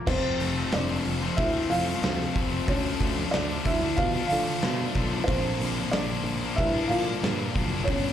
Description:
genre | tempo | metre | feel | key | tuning
quiet-loud alternative rock | 92 BPM | 4/4 | straight | unclear | A4 = 440 Hz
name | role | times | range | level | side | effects
felt-muted upright piano | melody | 0.0-8.1 s | C4 to F5 | -29 LUFS | equal | slapback echo
cranked stack guitar | riff | 0.1-8.1 s | F2 to D4 | -30 LUFS | left 9 dB | overdrive
thick fuzz guitar | riff | 0.1-8.1 s | F2 to D4 | -34 LUFS | right 10 dB | distortion, slapback echo
picked electric bass | bass | 0.1-8.1 s | F1 to D3 | -32 LUFS | equal | none
loose indie drum kit | drums | 0.1-8.0 s | crash cymbal, hi-hat, kick drum, snare drum | -30 LUFS | equal | none
room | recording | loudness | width
small room ambience | live gig heard through the venue's PA, club reverb | -24 LUFS | side -10 dB against mid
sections
0.1-8.1 A section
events
none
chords
0.1 F; 2.7 Dm; 5.3 Bb

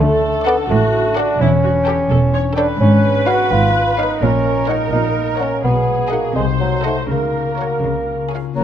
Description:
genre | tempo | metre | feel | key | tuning
cinematic, playful, whimsical film cue | 85 BPM (dotted quarters) | 6/8 | straight | F# major | A4 = 440 Hz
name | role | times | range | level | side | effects
mellow bassoon | accompaniment | 0.0-8.3 s | Gb3 to F#4 | -18 LUFS | right 1 dB | none
rich studio viola section | accompaniment | 0.0-8.6 s | E4 to C#5 | -23 LUFS | right 1 dB | none
concert harp | arpeggios | 0.0-8.6 s | F#2 to A4 | -22 LUFS | left 10 dB | none
rich studio double bass section | bass | 0.0-8.6 s | E1 to D2 | -21 LUFS | right 3 dB | none
warm studio cello section | bass | 0.0-8.6 s | E2 to D3 | -22 LUFS | right 2 dB | none
rich studio violin section | melody | 0.5-8.6 s | A#4 to G5 | -30 LUFS | left 2 dB | none
rich studio violin section | second line | 0.5-8.5 s | G#4 to D#5 | -28 LUFS | left 3 dB | none
mellow small flute group | second line | 8.6 s | A#5 | -23 LUFS | left 6 dB | none
warm clarinet | second line | 8.6 s | C#5 | -23 LUFS | left 2 dB | none
mellow French horn section | sustained chords | 8.6 s | C#3 to A#3 | -21 LUFS | left 5 dB | none
room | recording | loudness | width
moderate scoring stage reverb, RT60 1.7 s | none | -14 LUFS | side -9 dB against mid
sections
0.0-8.6 A section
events
none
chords
0.0 D; 1.4 A7/E; 2.8 C#7/G#; 4.2 F#/A#; 5.6 G#m7/B; 6.3 Cdim7; 7.1 F#/C#; 7.8 C#

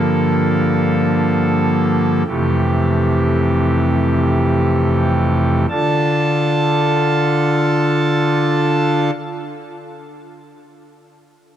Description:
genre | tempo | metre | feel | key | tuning
hip hop | free time | none | none | D minor | A4 = 440 Hz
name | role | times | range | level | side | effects
pipe organ, foundations | solo | 0.0-9.1 s | F2 to A5 | -14 LUFS | equal | none
room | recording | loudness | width
moderate huge ambient reverb, RT60 4.7 s | none | -14 LUFS | side -10 dB against mid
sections
0.0-5.7 A section; 5.7-9.1 B section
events
none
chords
0.0 Gm7; 2.3 Fmaj7; 5.7 Dm

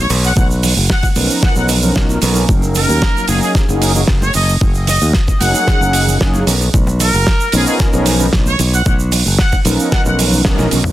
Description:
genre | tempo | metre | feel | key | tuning
nu-disco, nu disco | 113 BPM | 4/4 | straight | unclear | A4 = 439 Hz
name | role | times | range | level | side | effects
brilliant trumpet section | melody | 0.0-10.1 s | G#4 to F#5 | -20 LUFS | equal | tape echo
modern bright fingered electric bass | bass | 0.0-10.9 s | F#1 to D#2 | -16 LUFS | equal | none
damped 70s drum kit | drums | 0.1-10.9 s | hi-hat, shaker, snare drum, toms | -18 LUFS | right 2 dB | none
bongos and congas | percussion | 0.1-10.9 s | none | -26 LUFS | right 2 dB | none
electronic kick drum | drums | 0.4-10.6 s | none | -14 LUFS | equal | overdrive
mellow synth brass | accompaniment | 1.1-10.8 s | E#3 to A#4 | -18 LUFS | equal | chorus, cassette tape, sidechain pumping
room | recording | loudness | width
light reverb, small room ambience | dense, heavily limited modern master | -11 LUFS | side -14 dB against mid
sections
0.0-10.9 A section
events
drum fill 10.5-10.9; band accent 10.5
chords
0.0 Bmaj9#11; 2.5 F#69; 6.5 Bmaj9#11

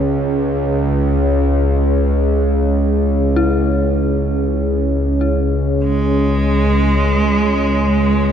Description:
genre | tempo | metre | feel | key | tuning
dark ambient drone | free time | none | none | C# minor | A4 = 441 Hz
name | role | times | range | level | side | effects
dark analog pad | sustained chords | 0.0-8.3 s | C#4 to C#5 | -20 LUFS | right 1 dB | chorus
bowed-like drone | drone | 0.0-8.3 s | C#2 | -16 LUFS | equal | built-in reverb
dark detuned synth bell | arpeggios | 3.4-8.3 s | E4 | -25 LUFS | left 7 dB | chorus, tremolo, ping-pong delay
rich cello | melody | 5.8-8.3 s | G#3 to B3 | -17 LUFS | right 2 dB | none
room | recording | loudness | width
moderate cathedral reverb, RT60 5.4 s | cassette tape | -14 LUFS | side -8 dB against mid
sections
0.0-8.3 A section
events
filter sweep on synth drone 0.0-8.3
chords
0.0 C#5

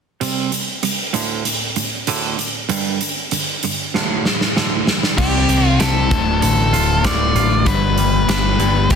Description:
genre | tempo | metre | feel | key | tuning
quiet-loud alternative rock | 97 BPM | 4/4 | straight | D dorian | A4 = 442 Hz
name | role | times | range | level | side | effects
twangy electric guitar | arpeggios | 0.2-9.0 s | D2 to G4 | -23 LUFS | right 9 dB | wide subtle chorus
huge arena drum kit | drums | 0.2-9.0 s | crash cymbal, hi-hat, kick drum, snare drum | -19 LUFS | right 1 dB | none
octave-fuzz lead guitar | melody | 5.2-9.0 s | G4 to D5 | -20 LUFS | left 2 dB | distortion
overdriven semi-hollow guitar | riff | 5.2-9.0 s | D2 to C4 | -20 LUFS | left 11 dB | none
growling picked electric bass | bass | 5.2-9.0 s | D1 to C2 | -19 LUFS | equal | overdrive
room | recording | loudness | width
light reverb, small room ambience | dense, heavily limited modern master | -15 LUFS | side -6 dB against mid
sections
0.2-5.2 A section; 5.2-9.0 B section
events
drum fill 3.9-5.2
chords
0.2 C5; 1.1 D5; 2.7 G5; 3.9 D5; 5.2 C5; 6.1 Dm; 7.7 G

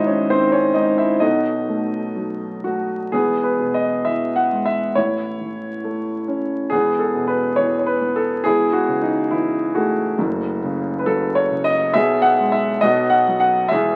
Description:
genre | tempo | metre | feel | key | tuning
classical, lyrical solo piano | 68 BPM | 4/4 | uneven beats, rubato | E major from 3.1 s | A4 = 440 Hz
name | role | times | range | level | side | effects
dark concert grand piano | solo | 0.0-14.0 s | E1 to F#5 | -19 LUFS | equal | none
room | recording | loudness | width
moderate studio reverb, RT60 0.5 s | very old 78 rpm record, vinyl crackle | -19 LUFS | mono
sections
0.0-3.1 A section; 3.1-14.0 B section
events
none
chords
0.0 G#7; 1.2 B7; 3.1 E; 5.0 A; 6.7 E5; 8.5 C#m/E; 10.2 F#m; 11.9 Eadd9/B; 12.8 B5

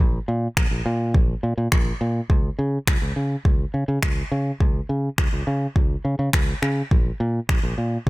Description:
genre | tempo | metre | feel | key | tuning
dance-pop | 104 BPM | 4/4 | straight | unclear | A4 = 440 Hz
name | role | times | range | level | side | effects
fingered electric bass | bass | 0.0-8.1 s | Bb1 to Db3 | -23 LUFS | equal | sidechain pumping
deep house drum kit | drums | 0.6-8.1 s | finger snaps, kick drum | -20 LUFS | equal | none
room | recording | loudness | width
little or no reverb | none | -20 LUFS | side -21 dB against mid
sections
0.0-8.1 A section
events
none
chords
none

